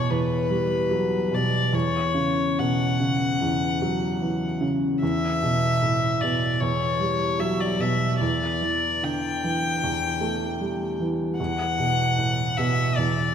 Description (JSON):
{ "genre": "neoclassical piano and strings", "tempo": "75 BPM", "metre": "4/4", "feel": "rubato", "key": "E dorian", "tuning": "A4 = 440 Hz", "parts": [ { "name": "rich violin", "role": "melody", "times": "0.0-13.3 s", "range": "B4 to G5", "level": "-26 LUFS", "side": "left 4 dB", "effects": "none" }, { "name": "felt-muted upright piano", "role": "accompaniment", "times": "0.0-13.3 s", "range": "E2 to A3", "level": "-24 LUFS", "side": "right 1 dB", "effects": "none" } ], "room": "wet concert hall reverb, RT60 2.5 s", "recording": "none", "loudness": "-22 LUFS", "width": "side -8 dB against mid", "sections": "0.0-13.3 A section", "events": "none", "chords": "0.0 Emadd9; 1.7 F#5/E; 5.0 Emadd9; 8.2 Asus4/E; 11.4 Esus2" }